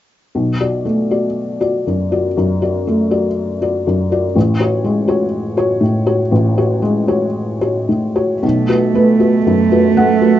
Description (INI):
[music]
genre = neoclassical piano and strings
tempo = 60 BPM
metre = 4/4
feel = rubato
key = B dorian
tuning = A4 = 440 Hz
[part]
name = felt-muted upright piano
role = accompaniment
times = 0.3-10.4 s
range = A1 to F#5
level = -14 LUFS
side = left 1 dB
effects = none
[part]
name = muted cello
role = second line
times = 8.4-10.4 s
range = A3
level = -13 LUFS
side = right 6 dB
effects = none
[sound]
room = wet studio ambience, RT60 0.5 s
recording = rough home demo mix, nothing above 7.7 kHz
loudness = -13 LUFS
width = side -12 dB against mid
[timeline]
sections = 0.3-8.4 A section; 8.4-10.4 B section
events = none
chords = 0.3 Bm7; 4.4 F#madd9/A; 8.4 B7(no3)